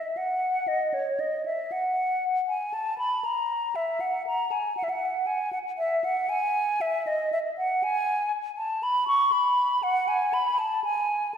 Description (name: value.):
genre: classical, baroque-style fantasia for unaccompanied flute.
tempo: 79 BPM (dotted quarters).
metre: 12/8.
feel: rubato.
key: unclear.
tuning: A4 = 440 Hz.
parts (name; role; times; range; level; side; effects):
hollow concert flute; solo; 0.0-11.4 s; C#5 to C#6; -24 LUFS; equal; none.
room: wet scoring stage reverb, RT60 1.5 s.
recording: heard from further back in the room.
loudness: -24 LUFS.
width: side -8 dB against mid.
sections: 0.0-11.4 A section.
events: none.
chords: none.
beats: | 0.17 0.94 1.71 2.48 | 3.25 4.01 4.77 5.53 | 6.30 7.07 7.83 8.58 | 9.33 10.09 10.85.